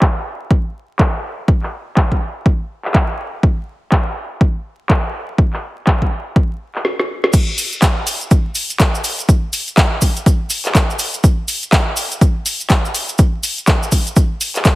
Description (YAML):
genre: house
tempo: 123 BPM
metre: 4/4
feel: swing 60% on 16ths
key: none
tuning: none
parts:
  - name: deep house drum kit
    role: drums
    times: 0.0-14.8 s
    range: crash cymbal, handclaps, hi-hat, snare drum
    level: -19 LUFS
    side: equal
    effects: low-pass filter on snare, low-pass filter on hats, low-pass filter on cymbals, low-pass filter on room
  - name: electronic kick drum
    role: drums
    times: 0.0-14.8 s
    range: none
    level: -13 LUFS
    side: equal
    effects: none
  - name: cabasa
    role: percussion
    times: 7.3-14.8 s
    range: none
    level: -24 LUFS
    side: right 2 dB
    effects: none
room: light reverb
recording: heavily compressed radio sound, vinyl crackle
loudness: -14 LUFS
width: side -18 dB against mid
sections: 0.0-7.3 A section; 7.3-14.8 B section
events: drum fill 6.8-7.3; drop 7.3-14.8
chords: none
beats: 0.02 0.51 0.99 | 1.48 1.97 2.46 2.95 | 3.43 3.92 4.41 4.90 | 5.38 5.87 6.36 6.85 | 7.34 7.82 8.31 8.80 | 9.29 9.78 10.26 10.75 | 11.24 11.73 12.21 12.70 | 13.19 13.68 14.16 14.65